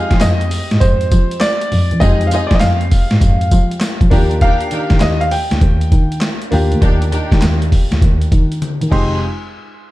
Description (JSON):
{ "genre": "R&B, new jack swing", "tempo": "100 BPM", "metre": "4/4", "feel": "swing 65% on 16ths", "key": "F dorian", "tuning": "A4 = 440 Hz", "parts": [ { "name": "warm concert grand piano", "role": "melody", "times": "0.0-9.2 s", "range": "C5 to C6", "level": "-20 LUFS", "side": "equal", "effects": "ping-pong delay" }, { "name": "clear concert grand piano", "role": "accompaniment", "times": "0.0-9.2 s", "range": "Ab3 to G4", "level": "-24 LUFS", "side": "left 1 dB", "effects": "none" }, { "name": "warm symphonic string section", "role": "stabs", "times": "0.0-9.2 s", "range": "D4 to Ab4", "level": "-25 LUFS", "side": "equal", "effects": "none" }, { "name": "dark double bass", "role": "bass", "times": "0.0-9.2 s", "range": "F1 to F3", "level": "-16 LUFS", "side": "equal", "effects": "none" }, { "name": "boom bap sampler-style drum kit", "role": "drums", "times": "0.1-9.1 s", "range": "crash cymbal, handclaps, hi-hat, kick drum, snare drum, tambourine, toms", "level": "-15 LUFS", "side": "equal", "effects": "none" } ], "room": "studio reverb", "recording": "dark, warm production", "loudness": "-12 LUFS", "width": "side -17 dB against mid", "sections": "0.0-9.2 A section", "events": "drum fill 8.6-9.2", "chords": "0.0 Fm7; 4.1 Ebmaj7; 8.9 Fm7; 9.2 N.C.", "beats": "0.22 0.82 1.42 | 2.02 2.62 3.22 3.82 | 4.42 5.02 5.62 6.22 | 6.82 7.42 8.02 8.62 | 9.22" }